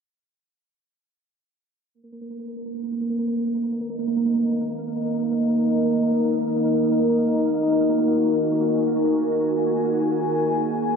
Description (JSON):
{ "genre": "drum and bass", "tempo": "free time", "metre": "none", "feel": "none", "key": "Eb minor", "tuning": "A4 = 441 Hz", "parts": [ { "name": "deep dark ambient pad", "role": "sustained chords", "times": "4.3-11.0 s", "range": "Eb4 to Ab5", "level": "-22 LUFS", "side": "left 2 dB", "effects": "chorus, built-in reverb" }, { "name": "pulsing gated texture", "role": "texture", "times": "2.2-11.0 s", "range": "Bb3 to Bb4", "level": "-23 LUFS", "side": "right 3 dB", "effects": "chorus, built-in reverb" } ], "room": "wet lush hall reverb, RT60 3.0 s", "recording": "low-pass filter, nothing above 7.6 kHz", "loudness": "-20 LUFS", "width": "side -6 dB against mid", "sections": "1.9-11.0 A section", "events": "filter sweep 1.9-11.0", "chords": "1.9 Eb5" }